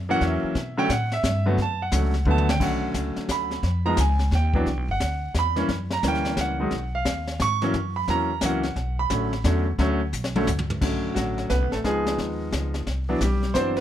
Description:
jazz piano trio; 176 BPM; 3/4; swing 64% on 8ths; B minor; A4 = 440 Hz
upright bass; bass; 0.0-13.8 s; G1 to B2; -26 LUFS; equal
clear concert grand piano; melody; 0.1-13.8 s; D3 to C#6; -24 LUFS; right 1 dB; plate reverb
jazz brush drum kit; drums; 0.2-13.8 s; brushed snare drum, crash cymbal, hi-hat, kick drum, snare drum, toms; -30 LUFS; left 2 dB
light reverb; -22 LUFS; side -11 dB against mid
0.0-2.6 A section; 2.6-10.8 A section; 10.8-13.8 B section
grand piano solo 0.0-10.8; drum fill 2.3-2.6, 10.1-10.8
0.0 F#7; 0.6 Bm9; 3.6 C#9; 4.7 Cmaj9#11; 5.7 F#7b9; 6.7 B6; 7.7 F#7; 8.8 Bm9; 11.8 C#9; 12.9 Cmaj9#11
0.21 | 0.55 0.90 1.24 | 1.58 1.92 2.26 | 2.60 2.95 3.29 | 3.63 3.98 4.32 | 4.66 5.00 5.34 | 5.69 6.03 6.37 | 6.71 7.06 7.40 | 7.74 8.08 8.42 | 8.77 9.11 9.45 | 9.79 10.13 10.47 | 10.81 11.15 11.50 | 11.84 12.18 12.52 | 12.86 13.21 13.55

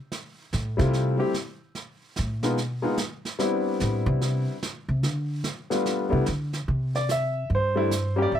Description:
jazz piano trio; 146 BPM; 4/4; swing 65% on 8ths; A4 = 439 Hz
jazz brush drum kit; drums; 0.1-8.4 s; brushed snare drum, hi-hat, snare drum; -34 LUFS; right 4 dB
upright bass; bass; 0.5-8.4 s; G2 to D3; -25 LUFS; equal
clear upright piano; melody; 0.8-8.4 s; G3 to E5; -25 LUFS; left 2 dB
light reverb; -24 LUFS; side -10 dB against mid
0.0-6.7 A section; 6.7-8.4 B section
upright bass solo 0.0-6.7
0.1 Fmaj7; 1.8 N.C.; 3.4 Cmaj9; 5.0 N.C.; 5.9 G7; 6.7 C
| 0.11 0.52 0.93 1.34 | 1.75 2.16 2.57 2.98 | 3.39 3.80 4.21 4.62 | 5.03 5.44 5.85 6.26 | 6.67 7.08 7.49 7.90 | 8.31

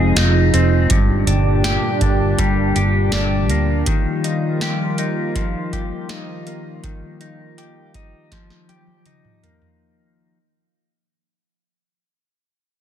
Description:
dream pop; 81 BPM; 4/4; straight; Eb major; A4 = 439 Hz
warm analog pad; sustained chords; 0.0-9.8 s; Bb2 to G4; -22 LUFS; right 1 dB; chorus
clean electric guitar; arpeggios; 0.0-10.4 s; G2 to Ab4; -22 LUFS; left 3 dB; wide subtle chorus, ping-pong delay
vintage muted fingered electric bass; bass; 0.0-3.8 s; F1 to D2; -18 LUFS; right 1 dB
booming analog drum machine; drums; 0.2-9.8 s; hi-hat, kick drum, snare drum, toms; -22 LUFS; right 1 dB
light reverb, digital ambience; dense, heavily limited modern master; -15 LUFS; side -10 dB against mid
0.0-9.8 A section
fade-out 0.0-9.8; drum fill 8.3-9.8
0.0 Fm7; 0.9 Gm; 3.9 Ebadd9
0.17 | 0.91 1.65 2.39 3.13 | 3.87 4.61 5.35 6.09 | 6.83 7.57 8.31 9.05

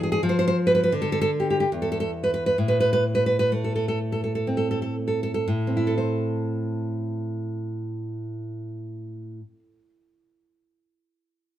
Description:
romantic piece for solo classical guitar; 58-89 BPM; 3/4; rubato; A minor; A4 = 444 Hz
nylon-string guitar; solo; 0.0-9.9 s; E2 to C5; -22 LUFS; equal
moderate stone room reverb, RT60 1.1 s; band playing live in one room; -22 LUFS; side -12 dB against mid
0.0-5.5 A section; 5.5-11.3 B section
slowing down 0.0-5.5
0.2 N.C.; 2.5 Am
| 0.21 0.91 1.67 | 2.54 3.49 4.44 | 5.45 6.42 7.39 | 8.36 9.33

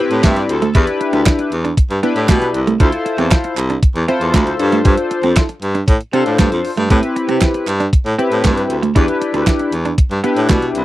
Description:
early-eighties boogie funk; 117 BPM; 4/4; straight; A minor; A4 = 439 Hz
chorused polysynth; accompaniment; 0.0-10.8 s; C4 to E5; -17 LUFS; left 2 dB
semi-hollow electric guitar; riff; 0.0-10.7 s; G3 to E4; -19 LUFS; right 5 dB; analog chorus
clear baritone saxophone; bass; 0.1-10.8 s; C2 to C3; -18 LUFS; equal
clean 12-bit digital drum machine; drums; 0.1-10.8 s; hi-hat, kick drum, snare drum; -14 LUFS; equal
group handclap; percussion; 0.2-10.6 s; -24 LUFS; right 8 dB
little or no reverb; dry, close 1970s-style studio recording; -13 LUFS; side -16 dB against mid
0.0-10.8 A section
0.0 Am7; 0.8 Em7; 2.8 Dm9; 4.6 G9sus4; 6.9 Am7; 9.0 Em7
0.24 | 0.75 1.26 1.78 2.29 | 2.80 3.31 3.83 4.34 | 4.85 5.37 5.88 6.39 | 6.90 7.42 7.93 8.44 | 8.96 9.47 9.98 10.49

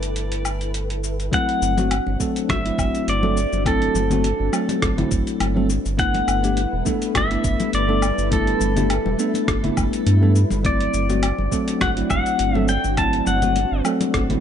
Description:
sunset chillout; 103 BPM; 4/4; swing 54% on 16ths; A4 = 440 Hz
pedal steel guitar; melody; 0.0-13.8 s; A4 to A5; -24 LUFS; left 2 dB; tape echo
bell-like tine electric piano; accompaniment; 0.0-14.4 s; F#3 to A4; -24 LUFS; equal; auto-pan, tape echo
soft string machine; sustained chords; 0.0-14.4 s; G3 to G5; -29 LUFS; equal; ensemble chorus
round analog bass; bass; 0.0-14.4 s; E1 to G2; -22 LUFS; equal
dusty soul sampler-style drum kit; drums; 0.0-14.4 s; hi-hat, rim click, shaker, woodblock; -28 LUFS; left 1 dB; overdrive
electronic kick drum; drums; 1.3-14.3 s; -26 LUFS; right 1 dB; overdrive
congas; percussion; 1.3-14.4 s; -29 LUFS; left 6 dB
light reverb; nothing above 10.4 kHz; -18 LUFS; side -9 dB against mid
0.0-1.3 A section; 1.3-14.4 B section
0.0 G69; 1.3 D7/G; 5.7 G69; 10.6 D7/G
0.16 0.74 | 1.33 1.91 2.49 3.08 | 3.66 4.24 4.82 5.41 | 5.99 6.57 7.15 7.74 | 8.32 8.90 9.48 10.06 | 10.65 11.23 11.81 12.39 | 12.98 13.56 14.14

